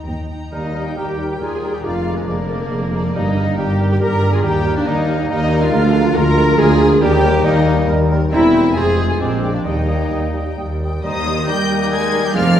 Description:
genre	classical, dramatic, fast romantic movement for symphony orchestra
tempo	138 BPM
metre	3/4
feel	rubato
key	Eb major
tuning	A4 = 440 Hz
part	warm symphonic violin section	melody	0.0-12.6 s	Bb4 to Ab6	-29 LUFS	left 5 dB	none
part	warm clarinet	second line	0.0-12.6 s	F3 to G4	-26 LUFS	left 2 dB	none
part	warm studio violin section	second line	0.0-12.6 s	Ab4 to Bb5	-29 LUFS	equal	none
part	warm symphonic viola section	accompaniment	0.0-12.6 s	Ab3 to D5	-20 LUFS	equal	none
part	dark chamber double bass section	bass	0.1-12.6 s	E1 to F2	-22 LUFS	right 1 dB	none
part	rich symphonic cello section	bass	0.1-12.6 s	D2 to Ab3	-23 LUFS	right 1 dB	none
part	large flute ensemble	second line	0.5-12.6 s	Eb5 to Bb5	-32 LUFS	left 2 dB	none
part	mellow cor anglais	second line	0.5-12.6 s	Eb4 to Eb5	-31 LUFS	equal	none
part	dark bassoon	accompaniment	0.5-12.6 s	G3 to Ab3	-27 LUFS	right 1 dB	none
part	mellow French horn section	sustained chords	0.5-12.6 s	Bb3 to Bb4	-27 LUFS	left 5 dB	none
part	warm trombone section	sustained chords	0.5-12.6 s	D3 to Ab3	-27 LUFS	equal	none
part	clear trumpet	stabs	0.5-12.6 s	Ab3 to Eb5	-28 LUFS	equal	none
part	dark tuba	bass	0.5-12.6 s	E1 to Eb2	-22 LUFS	right 1 dB	none
room	wet scoring stage reverb, RT60 1.4 s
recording	heard from further back in the room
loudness	-14 LUFS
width	side -10 dB against mid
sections	0.5-11.0 A section; 11.0-12.6 A section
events	none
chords	0.0 Eb; 1.8 Bb7/F; 3.1 Eb/G; 4.4 Eb; 5.7 Bb7/D; 7.0 Eb; 8.3 C7/E; 8.8 Fm; 9.2 Bb13; 9.6 Eb

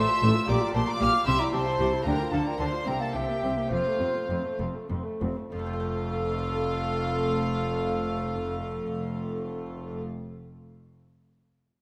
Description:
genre	classical, baroque-style concerto movement with solo episodes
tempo	64-77 BPM (dotted quarters)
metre	6/8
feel	straight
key	F major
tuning	A4 = 440 Hz
part	baroque flute	melody	0.0-10.0 s	A4 to D6	-33 LUFS	equal	none
part	rich chamber violin section	melody	0.0-10.0 s	F5 to F6	-39 LUFS	equal	none
part	rich chamber violin section	second line	0.0-10.0 s	F4 to F5	-38 LUFS	equal	none
part	dark chamber viola section	accompaniment	0.0-10.0 s	A3 to A4	-36 LUFS	equal	none
part	lute	accompaniment	0.0-10.7 s	F2 to C5	-40 LUFS	equal	none
part	rich chamber double bass section	bass	0.0-10.0 s	F1 to D2	-35 LUFS	equal	none
part	warm chamber cello section	bass	0.0-10.0 s	F2 to D3	-35 LUFS	equal	none
room	wet scoring stage reverb, RT60 2.0 s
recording	none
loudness	-28 LUFS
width	mono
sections	0.0-5.5 A section; 5.5-9.3 B section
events	slowing down 1.3-5.5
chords	0.5 Gm7/Bb; 1.3 C; 2.1 Dm; 2.9 C7; 3.7 F

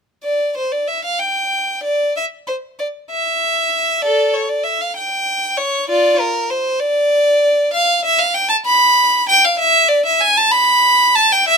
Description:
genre	classical, baroque-style suite movement for unaccompanied violin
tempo	64 BPM (dotted quarters)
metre	6/8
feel	rubato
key	D minor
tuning	A4 = 440 Hz
part	clear violin	solo	0.2-11.6 s	F4 to B5	-13 LUFS	equal	none
room	little or no reverb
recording	close, detailed microphones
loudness	-13 LUFS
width	side -5 dB against mid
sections	0.2-11.6 A section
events	none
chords	none

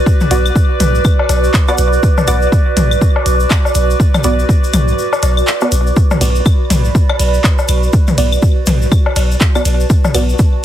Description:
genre	minimal techno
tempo	122 BPM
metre	4/4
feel	swing 59% on 16ths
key	B minor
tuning	A4 = 438 Hz
part	warbly tape-like pad	texture	0.0-10.6 s	F#4 to D6	-18 LUFS	right 2 dB	chorus, built-in reverb, phaser, sidechain pumping
part	electronic kick drum	drums	0.1-10.5 s	none	-11 LUFS	equal	overdrive
part	tube shaker	percussion	0.1-10.5 s	none	-28 LUFS	left 5 dB	none
part	electronic toms, claves and woodblock	percussion	0.2-10.3 s	none	-18 LUFS	left 3 dB	ping-pong delay
part	filtered dub chord stab	stabs	0.3-10.2 s	B3 to D5	-20 LUFS	right 2 dB	chorus, ping-pong delay
part	punchy sub bass	bass	0.3-10.3 s	B1	-14 LUFS	equal	sidechain pumping
part	minimal click drum kit	drums	0.3-10.3 s	handclaps, hi-hat, ride cymbal	-20 LUFS	right 1 dB	none
room	light reverb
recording	heavily compressed radio sound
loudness	-10 LUFS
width	side -11 dB against mid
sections	0.0-10.6 A section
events	kick drops out 5.0-6.0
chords	0.0 Bm

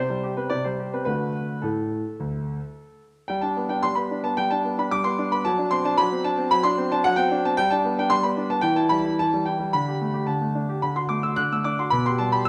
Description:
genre	classical-period piano sonatina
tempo	110 BPM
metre	4/4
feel	straight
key	G major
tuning	A4 = 436 Hz
part	clear concert grand piano	solo	0.0-12.5 s	D2 to F#6	-24 LUFS	equal	none
room	moderate recital hall reverb, RT60 1.6 s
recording	none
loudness	-24 LUFS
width	mono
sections	0.0-3.3 A section; 3.3-12.5 B section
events	none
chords	0.0 C5; 1.1 D; 3.3 G; 5.5 D7/F#; 7.6 G; 8.6 Em; 9.7 Dsus4; 10.8 D; 11.9 G/B

